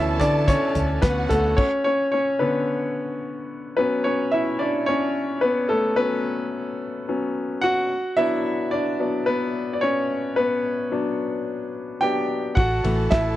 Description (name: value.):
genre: piano-driven pop.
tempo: 109 BPM.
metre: 4/4.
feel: straight.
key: B minor.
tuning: A4 = 438 Hz.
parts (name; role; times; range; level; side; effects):
warm studio violin section; second line; 0.0-1.6, 12.6-13.4 s; F#4 to A5; -31 LUFS; right 3 dB; none.
clear concert grand piano; accompaniment; 0.0-13.4 s; D3 to G5; -21 LUFS; left 1 dB; none.
vintage muted fingered electric bass; bass; 0.0-1.5, 12.6-13.3 s; A1 to D3; -24 LUFS; equal; none.
damped 70s drum kit; drums; 0.2-1.7, 12.6-13.2 s; crash cymbal, hi-hat, kick drum, ride cymbal, snare drum, toms; -23 LUFS; equal; none.
group handclap; percussion; 0.2-1.2, 13.1-13.2 s; none; -43 LUFS; right 5 dB; none.
room: moderate spring reverb, RT60 2.5 s.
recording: worn, warbling old tape, cassette tape, warbly pitch drift.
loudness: -20 LUFS.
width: side -14 dB against mid.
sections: 0.0-3.8 A section; 3.8-13.4 A section.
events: grand piano solo 0.0-3.8, 3.8-13.4; stop 1.6-3.8.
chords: 0.0 Dadd9; 1.6 Bmadd9; 3.8 F#sus4; 7.9 Bm; 12.6 A5.